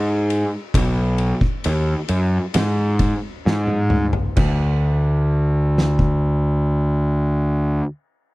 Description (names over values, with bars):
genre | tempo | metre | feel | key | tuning
stoner and doom metal | 65 BPM | 4/4 | straight | unclear | A4 = 439 Hz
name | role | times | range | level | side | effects
fuzz picked electric bass | bass | 0.0-7.8 s | B1 to G#2 | -18 LUFS | equal | overdrive
oversized low-tuned drum kit | drums | 0.3-6.2 s | crash cymbal, kick drum, ride cymbal, snare drum, toms | -22 LUFS | equal | none
room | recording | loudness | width
little or no reverb | dry, close 1970s-style studio recording | -17 LUFS | side -21 dB against mid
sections
0.0-4.4 A section; 4.4-8.1 B section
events
slowing down 0.0-4.4; drum fill 3.5-4.4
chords
none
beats
| 0.74 1.64 2.54 3.45 | 4.37 5.30 6.22 7.15